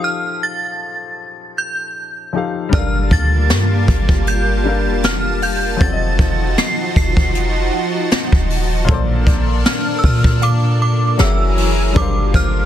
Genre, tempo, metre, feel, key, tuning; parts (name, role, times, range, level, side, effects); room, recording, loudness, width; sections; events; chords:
contemporary R&B; 78 BPM; 4/4; swing 54% on 16ths; A4 = 442 Hz
synth chime; melody; 0.0-12.7 s; D6 to C7; -22 LUFS; right 1 dB; ensemble chorus, tremolo, digital delay
clear baby grand piano; accompaniment; 0.0-12.7 s; Bb2 to F5; -25 LUFS; left 6 dB
lush unison pad; sustained chords; 2.7-12.7 s; E3 to A5; -22 LUFS; equal; chorus, sidechain pumping
clean 808-style bass; bass; 2.7-12.7 s; Eb1 to Bb2; -17 LUFS; equal
jazz brush drum kit; drums; 2.7-12.5 s; hi-hat, kick drum, snare drum; -17 LUFS; equal
mallet-like synth pluck; texture; 2.7-12.7 s; C5 to Gb5; -31 LUFS; right 3 dB; chorus, phaser, digital delay
small room ambience; dense, heavily limited modern master; -14 LUFS; side -11 dB against mid
0.0-12.7 A section
0.0 F9; 2.7 Gm9; 5.8 F7b9; 8.9 Bbmaj7; 11.2 F#9; 12.0 Gm11